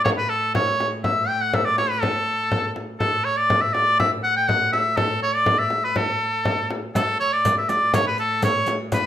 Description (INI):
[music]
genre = medieval dance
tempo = 122 BPM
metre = 2/4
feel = straight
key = A mixolydian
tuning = A4 = 441 Hz
[part]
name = bright shawm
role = melody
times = 0.0-9.1 s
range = A4 to G5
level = -20 LUFS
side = equal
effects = plate reverb
[part]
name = rich viola da gamba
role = drone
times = 0.0-9.1 s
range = A2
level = -33 LUFS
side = right 1 dB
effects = stereo widening
[part]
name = frame drum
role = percussion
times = 0.1-9.1 s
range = none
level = -25 LUFS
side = left 1 dB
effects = none
[part]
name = riq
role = percussion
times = 7.0-9.1 s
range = none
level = -31 LUFS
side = right 3 dB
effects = none
[sound]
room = wet studio reverb, RT60 0.6 s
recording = rough home demo mix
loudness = -19 LUFS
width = side -11 dB against mid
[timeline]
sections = 0.0-7.0 A section; 7.0-9.1 A section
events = none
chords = none